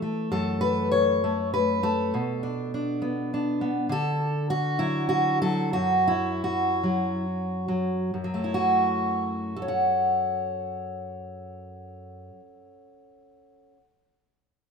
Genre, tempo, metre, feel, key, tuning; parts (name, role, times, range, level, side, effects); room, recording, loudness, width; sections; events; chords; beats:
folk, solo fingerstyle acoustic guitar; 63-102 BPM; 3/4; rubato; F# minor; A4 = 440 Hz
fingerpicked steel-string acoustic guitar; solo; 0.0-13.8 s; F#2 to F#5; -24 LUFS; equal
moderate recital hall reverb, RT60 1.6 s; minimal, uncompressed stereo recording; -23 LUFS; side -6 dB against mid
0.0-8.2 A section; 8.2-13.8 B section
slowing down 3.9-8.2
0.3 F#m7; 2.1 Bm7; 3.9 Dadd9; 5.8 N.C.; 8.2 F#m7
| 0.32 0.92 1.52 | 2.12 2.71 3.30 | 3.89 4.49 5.10 | 5.75 6.45 7.25 | 8.16 9.11 10.04 | 10.96 11.88 12.82